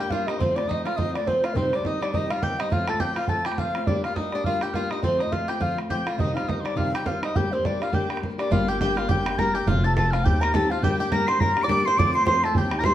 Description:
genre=celtic folk, Celtic reel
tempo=207 BPM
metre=4/4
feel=swing 57% on 8ths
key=G minor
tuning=A4 = 438 Hz
part: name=mellow hollow baroque flute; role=melody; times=0.0-12.9 s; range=Bb4 to D6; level=-26 LUFS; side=equal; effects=none
part: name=bluegrass banjo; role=second line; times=0.0-12.9 s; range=C4 to D5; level=-32 LUFS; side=right 3 dB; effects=none
part: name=mellow tin whistle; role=second line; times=0.0-12.9 s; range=C6 to D7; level=-32 LUFS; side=left 2 dB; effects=none
part: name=fingerpicked plugged-in steel-string acoustic guitar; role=accompaniment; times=0.0-12.9 s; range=C3 to G4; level=-28 LUFS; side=left 3 dB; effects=none
part: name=bodhran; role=percussion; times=0.1-12.9 s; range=none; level=-27 LUFS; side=right 2 dB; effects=none
part: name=upright bass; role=bass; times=8.5-12.9 s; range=F1 to G2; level=-28 LUFS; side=equal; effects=none
room=wet stone room reverb, RT60 1.0 s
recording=band playing live in one room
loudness=-21 LUFS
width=side -12 dB against mid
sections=0.0-8.5 A section; 8.5-12.9 B section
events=none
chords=0.4 F; 1.6 Cm; 2.7 F; 3.9 Gm; 5.0 F; 6.2 Cm; 7.4 Gm; 9.7 F; 10.2 Cm/Eb; 10.8 Gm; 12.0 F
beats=0.11 | 0.40 0.69 0.98 1.27 | 1.56 1.85 2.14 2.43 | 2.72 3.01 3.30 3.59 | 3.88 4.17 4.46 4.75 | 5.04 5.33 5.62 5.91 | 6.20 6.49 6.78 7.07 | 7.36 7.64 7.93 8.22 | 8.51 8.80 9.09 9.38 | 9.67 9.96 10.25 10.54 | 10.82 11.11 11.40 11.69 | 11.98 12.27 12.56 12.85

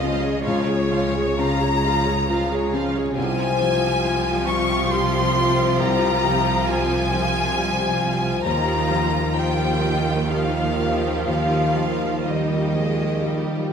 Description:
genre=cinematic, emotional film score for orchestra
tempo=61-69 BPM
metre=3/4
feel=rubato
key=unclear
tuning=A4 = 439 Hz
part: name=dark violin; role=melody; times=0.0-13.7 s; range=Db5 to Db6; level=-27 LUFS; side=left 5 dB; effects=none
part: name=rich studio violin section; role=melody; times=0.0-13.7 s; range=G4 to F5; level=-32 LUFS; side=equal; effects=none
part: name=clear studio violin section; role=second line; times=0.0-13.7 s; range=Db5 to Db6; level=-28 LUFS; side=right 1 dB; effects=none
part: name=felt-muted upright piano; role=accompaniment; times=0.0-13.7 s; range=C2 to G4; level=-26 LUFS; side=left 2 dB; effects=none
part: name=rich studio viola section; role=accompaniment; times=0.0-13.7 s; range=F3 to Ab4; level=-27 LUFS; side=right 2 dB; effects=none
part: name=concert harp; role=arpeggios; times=0.0-13.7 s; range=C3 to G4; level=-28 LUFS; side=left 7 dB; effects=none
part: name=bright studio double bass section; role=bass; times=0.0-13.7 s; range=C2 to Eb2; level=-28 LUFS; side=right 4 dB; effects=none
part: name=rich studio cello section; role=bass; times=0.0-13.7 s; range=C3 to Eb3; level=-27 LUFS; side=right 4 dB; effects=none
room=wet recital hall reverb, RT60 1.4 s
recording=minimal, uncompressed stereo recording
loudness=-18 LUFS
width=side -7 dB against mid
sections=0.0-13.7 A section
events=none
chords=0.0 Db; 3.2 Fmadd9/C; 8.5 Ebadd9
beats=| 0.45 1.39 2.29 | 3.17 4.04 4.92 | 5.80 6.69 7.57 | 8.46 9.37 10.30 | 11.28 12.26 13.23

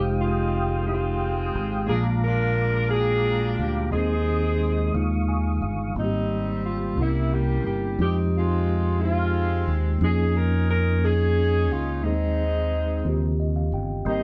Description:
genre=gospel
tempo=59 BPM (dotted quarters)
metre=6/8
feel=straight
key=Ab major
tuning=A4 = 440 Hz
part: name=dark saxophone section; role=melody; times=0.0-14.2 s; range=G3 to Bb4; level=-29 LUFS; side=equal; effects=none
part: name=mellow tine electric piano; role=accompaniment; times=0.0-14.2 s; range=Ab2 to Ab5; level=-31 LUFS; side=equal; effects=none
part: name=percussive tonewheel organ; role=sustained chords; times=0.0-5.9, 14.1-14.2 s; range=Ab3 to Eb6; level=-33 LUFS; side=equal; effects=slow rotary speaker, chorus vibrato
part: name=fingered electric bass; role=bass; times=0.0-14.2 s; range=F1 to F2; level=-26 LUFS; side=equal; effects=none
room=moderate studio reverb, RT60 0.6 s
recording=band playing live in one room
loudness=-24 LUFS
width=mono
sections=0.0-6.0 A section; 6.0-14.2 A section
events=tine electric piano fill 4.9-6.0, 13.1-14.1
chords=0.0 Fm9; 1.9 Bb7; 3.9 Ab/Eb; 4.9 Eb9sus4; 6.0 Abmaj9; 7.0 C7b9; 8.0 Fm9; 10.0 Db69/F; 12.0 Ab/Eb; 13.1 Eb13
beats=0.88 | 1.90 2.91 | 3.93 4.94 | 5.96 6.97 | 7.99 9.00 | 10.01 11.03 | 12.04 13.05 | 14.07

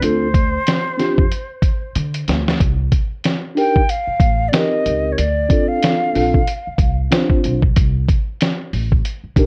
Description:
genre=hip hop, jazz-hop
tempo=93 BPM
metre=4/4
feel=swing 57% on 16ths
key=C dorian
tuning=A4 = 441 Hz
part: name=breathy mellow concert flute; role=melody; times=0.0-7.0 s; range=C5 to G5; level=-24 LUFS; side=equal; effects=none
part: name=mellow tine electric piano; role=accompaniment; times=0.0-9.5 s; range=C4 to C5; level=-21 LUFS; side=equal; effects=none
part: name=upright bass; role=bass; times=0.0-9.5 s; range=A1 to D3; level=-23 LUFS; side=equal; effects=none
part: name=lo-fi sampler-style drum kit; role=drums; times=0.0-9.5 s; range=hi-hat, kick drum, snare drum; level=-19 LUFS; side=equal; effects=none
room=moderate studio ambience, RT60 0.5 s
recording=worn, warbling old tape, cassette tape, warbly pitch drift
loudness=-17 LUFS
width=mono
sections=0.0-2.6 A section; 2.6-9.5 B section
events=drum fill 2.0-2.6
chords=0.0 Dm7; 2.6 Cm7; 5.2 Dm7; 7.8 Cm9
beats=| 0.02 0.67 1.31 1.96 | 2.60 3.25 3.90 4.54 | 5.19 5.83 6.48 7.12 | 7.77 8.41 9.06

